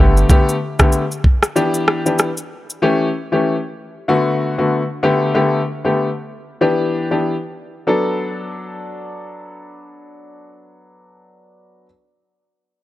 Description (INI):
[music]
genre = afrobeats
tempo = 95 BPM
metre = 4/4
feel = swing 58% on 16ths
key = B minor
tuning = A4 = 439 Hz
[part]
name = clear grand piano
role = accompaniment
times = 0.0-11.9 s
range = D3 to A4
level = -17 LUFS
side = left 2 dB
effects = none
[part]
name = afro-pop drum kit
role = drums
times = 0.2-2.8 s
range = kick drum, rim click, shaker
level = -14 LUFS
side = equal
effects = none
[sound]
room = light reverb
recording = dry, gritty hardware recording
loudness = -15 LUFS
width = side -15 dB against mid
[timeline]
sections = 0.0-7.9 A section; 7.9-10.4 B section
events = none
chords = 0.0 Gadd9; 1.6 Em7; 2.8 A7; 4.1 Bm7; 5.0 Gadd9; 6.6 Em7; 7.9 Bm7